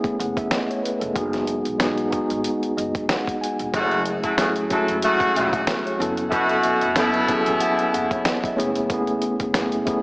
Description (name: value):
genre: hip hop, boom-bap hip-hop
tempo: 93 BPM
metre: 4/4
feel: swing 54% on 16ths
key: F# dorian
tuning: A4 = 436 Hz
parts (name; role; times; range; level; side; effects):
- mellow tine electric piano; accompaniment; 0.0-10.0 s; F#3 to A5; -23 LUFS; equal; medium stereo tremolo, cassette tape, high-pass filter, low-pass filter
- dusty soul sampler-style drum kit; drums; 0.0-10.0 s; hi-hat, kick drum, snare drum; -26 LUFS; equal; none
- upright bass; bass; 0.2-9.9 s; E1 to B1; -35 LUFS; equal; none
- warm horn section; stabs; 3.7-7.9 s; B2 to A4; -21 LUFS; equal; high-pass filter, low-pass filter, digital delay
room: light reverb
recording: small speaker sound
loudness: -19 LUFS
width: side -27 dB against mid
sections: 0.0-10.0 A section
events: tine electric piano fill 2.4-3.7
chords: 0.0 Amaj7/F#; 1.2 G#m7/F#; 3.7 F#m7; 6.0 B7sus4/F#; 8.6 Amaj7/F#